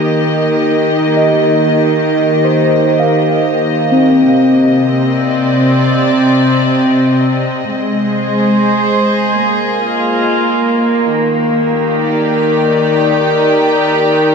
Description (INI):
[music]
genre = ambient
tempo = 71 BPM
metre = 4/4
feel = straight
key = Eb major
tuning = A4 = 440 Hz
[part]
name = warm studio string section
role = sustained chords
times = 0.0-14.3 s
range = C3 to Eb5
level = -11 LUFS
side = equal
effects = none
[part]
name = muted felt-like synth keys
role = arpeggios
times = 1.2-7.7 s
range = C4 to F5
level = -14 LUFS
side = equal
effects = chorus, phaser, diffuse ambient delay
[part]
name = twinkling granular texture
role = texture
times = 11.7-14.3 s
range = Bb4 to Bb5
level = -33 LUFS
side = left 1 dB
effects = none
[sound]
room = wet cathedral reverb, RT60 4.9 s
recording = none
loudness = -10 LUFS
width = side -5 dB against mid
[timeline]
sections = 0.0-11.1 A section; 11.1-14.3 B section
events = none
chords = 0.0 Eb; 4.3 Cmadd9; 7.7 Ab; 9.4 Bb7sus4; 11.1 Ebmaj7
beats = 0.10 | 0.94 1.79 2.63 3.48 | 4.32 5.17 6.01 6.86 | 7.70 8.55 9.39 10.24 | 11.08 11.93 12.77 13.62